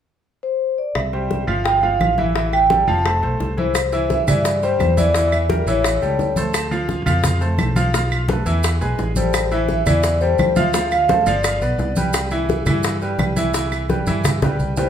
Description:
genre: latin, salsa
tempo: 171 BPM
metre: 4/4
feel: straight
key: C major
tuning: A4 = 441 Hz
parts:
  - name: vibraphone with soft mallets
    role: melody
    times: 0.4-6.3, 9.2-11.9, 14.8-14.9 s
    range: C5 to A5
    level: -19 LUFS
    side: equal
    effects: none
  - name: fingered electric bass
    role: bass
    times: 1.0-14.9 s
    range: F1 to G2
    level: -22 LUFS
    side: equal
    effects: none
  - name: bongos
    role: percussion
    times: 1.0-14.9 s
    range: none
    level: -26 LUFS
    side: left 4 dB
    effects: none
  - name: claves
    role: percussion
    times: 1.0-14.4 s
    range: none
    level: -30 LUFS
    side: right 4 dB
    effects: none
  - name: congas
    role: percussion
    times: 1.0-14.9 s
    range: none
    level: -24 LUFS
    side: equal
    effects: none
  - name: bright grand piano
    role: accompaniment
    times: 1.1-14.9 s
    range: E3 to F5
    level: -23 LUFS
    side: right 1 dB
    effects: none
  - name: maracas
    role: percussion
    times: 3.7-14.9 s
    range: none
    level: -31 LUFS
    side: right 4 dB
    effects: none
room: wet large studio reverb, RT60 1.0 s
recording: band playing live in one room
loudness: -16 LUFS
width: side -9 dB against mid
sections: 1.0-3.8 A section; 3.8-14.9 B section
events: drum fill 13.9-14.9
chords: 0.0 N.C.; 1.0 C; 1.7 Fmaj9/G; 2.4 A5; 3.1 F; 3.8 C; 5.1 Edim; 5.8 A7; 6.5 Dm7; 7.9 Fmaj7#11/B; 8.6 E; 9.3 Am7; 10.7 Dm7; 11.4 G7; 12.1 Cmaj7

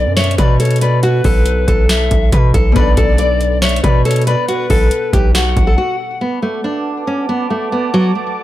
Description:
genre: hip hop, trap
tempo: 139 BPM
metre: 4/4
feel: half-time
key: B minor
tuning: A4 = 440 Hz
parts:
  - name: nylon-string guitar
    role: melody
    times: 0.0-8.4 s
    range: F#3 to D5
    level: -18 LUFS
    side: equal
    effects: none
  - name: bright reedy polished pan flute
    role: second line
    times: 0.0-6.2 s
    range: B4 to F#5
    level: -21 LUFS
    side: left 5 dB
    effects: ping-pong delay
  - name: Celtic harp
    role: accompaniment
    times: 0.0-6.3 s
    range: B2 to A4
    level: -25 LUFS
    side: left 3 dB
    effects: none
  - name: distorted 808-style bass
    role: bass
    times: 0.0-5.8 s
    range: B1 to B2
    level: -15 LUFS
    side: equal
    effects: distortion
  - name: booming analog drum machine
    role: drums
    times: 0.2-5.8 s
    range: hi-hat, kick drum, snare drum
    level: -14 LUFS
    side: equal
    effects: none
  - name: dark analog pad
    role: sustained chords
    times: 6.2-8.4 s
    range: B4 to D6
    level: -22 LUFS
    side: right 3 dB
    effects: chorus
room: little or no reverb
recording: dark, warm production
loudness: -12 LUFS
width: side -14 dB against mid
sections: 0.0-6.2 A section; 6.2-8.4 B section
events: break 5.8-6.2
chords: 0.0 Bm7

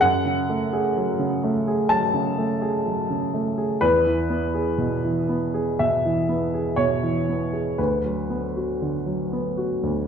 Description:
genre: neoclassical minimalist piano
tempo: 58-64 BPM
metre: 4/4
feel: rubato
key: F# minor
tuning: A4 = 441 Hz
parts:
  - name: warm upright piano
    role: solo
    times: 0.0-10.1 s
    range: D2 to A5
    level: -21 LUFS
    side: equal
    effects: none
room: wet recital hall reverb, RT60 1.3 s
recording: recorded in a church or concert hall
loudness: -21 LUFS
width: side -7 dB against mid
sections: 0.0-10.1 A section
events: none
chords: 0.0 F#madd9; 3.8 E; 7.8 Bm/D

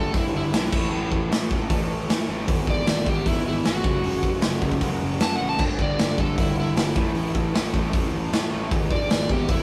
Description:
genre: garage rock duo or trio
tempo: 154 BPM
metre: 4/4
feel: straight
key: A mixolydian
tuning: A4 = 440 Hz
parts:
  - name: overdriven slide guitar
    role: melody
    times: 0.0-9.6 s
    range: E4 to A5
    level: -30 LUFS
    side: equal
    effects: none
  - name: fuzz guitar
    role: riff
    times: 0.0-9.6 s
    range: E2 to A3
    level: -31 LUFS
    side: equal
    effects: distortion
  - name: fuzz picked electric bass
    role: bass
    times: 0.0-9.6 s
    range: F#1 to A2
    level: -31 LUFS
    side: equal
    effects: overdrive
  - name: raw garage drum kit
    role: drums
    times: 0.1-9.6 s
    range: crash cymbal, hi-hat, kick drum, snare drum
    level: -26 LUFS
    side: equal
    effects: none
room: light reverb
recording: rough rehearsal-room recording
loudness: -23 LUFS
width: mono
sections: 0.0-9.6 A section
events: none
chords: 0.0 G; 0.7 A5; 2.5 E/G#; 3.8 F#5; 5.6 G5; 7.0 A5; 8.7 E/G#

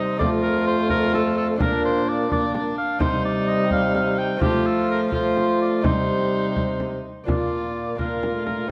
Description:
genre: classical, renaissance-style consort dance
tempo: 85 BPM (dotted quarters)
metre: 6/8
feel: straight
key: unclear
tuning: A4 = 440 Hz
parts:
  - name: warm oboe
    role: melody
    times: 0.0-8.7 s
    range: G4 to G5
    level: -29 LUFS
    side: equal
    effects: none
  - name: dark violin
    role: second line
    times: 0.0-8.7 s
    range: D4 to F4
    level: -30 LUFS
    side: equal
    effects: none
  - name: lute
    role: accompaniment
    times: 0.0-8.7 s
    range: F2 to F4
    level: -34 LUFS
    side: equal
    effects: none
  - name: mellow trombone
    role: accompaniment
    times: 0.0-8.7 s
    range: G3 to Bb3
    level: -28 LUFS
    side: equal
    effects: none
  - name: mellow bassoon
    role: bass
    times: 0.0-8.7 s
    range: F2 to F3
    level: -30 LUFS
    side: equal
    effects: none
  - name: frame drum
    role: percussion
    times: 0.2-8.7 s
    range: none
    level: -30 LUFS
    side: equal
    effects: none
room: wet recital hall reverb, RT60 1.7 s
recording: dark, warm production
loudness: -22 LUFS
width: mono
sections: 0.0-7.3 A section; 7.3-8.7 B section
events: none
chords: 0.2 F; 1.6 Bb; 3.0 Cm; 4.4 F; 5.8 Cm; 7.3 Bb

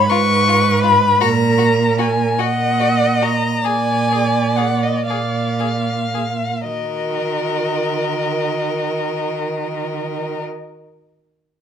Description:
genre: classical, slow romantic movement for string quartet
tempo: 36-54 BPM (dotted quarters)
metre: 12/8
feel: rubato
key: Eb minor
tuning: A4 = 439 Hz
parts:
  - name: warm violin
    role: second line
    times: 0.0-10.4 s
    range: Eb5 to Db6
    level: -19 LUFS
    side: left 4 dB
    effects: none
  - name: rich viola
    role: accompaniment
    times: 0.0-10.4 s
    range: Gb4 to Eb5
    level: -22 LUFS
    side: right 3 dB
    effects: none
  - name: rich violin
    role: melody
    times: 0.1-10.4 s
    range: F4 to Bb4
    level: -25 LUFS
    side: left 9 dB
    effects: none
  - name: warm cello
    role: bass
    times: 0.1-10.4 s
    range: Ab2 to Eb3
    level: -20 LUFS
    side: right 5 dB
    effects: none
room: light reverb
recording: minimal, uncompressed stereo recording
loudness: -15 LUFS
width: side -8 dB against mid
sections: 0.0-6.7 A section; 6.7-11.6 B section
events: slowing down 0.0-6.7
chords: 0.0 Fdim/Ab (rootless); 1.2 Ebm/Bb; 3.7 Bb7; 6.7 Ebm

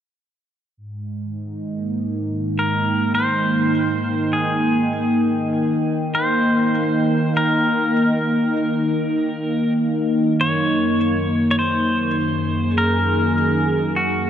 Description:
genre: ambient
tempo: 50 BPM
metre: 4/4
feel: straight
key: Ab major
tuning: A4 = 441 Hz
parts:
  - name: warm analog pad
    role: sustained chords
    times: 0.8-14.3 s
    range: Gb2 to G5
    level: -19 LUFS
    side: equal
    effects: chorus
  - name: pedal steel guitar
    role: melody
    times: 2.6-14.3 s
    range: Gb4 to Db5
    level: -22 LUFS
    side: equal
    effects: tape echo
room: wet cathedral reverb, RT60 5.1 s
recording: none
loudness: -17 LUFS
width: side -9 dB against mid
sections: 0.8-14.3 A section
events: none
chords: 0.8 Abmaj7; 5.6 Eb; 10.4 Gb

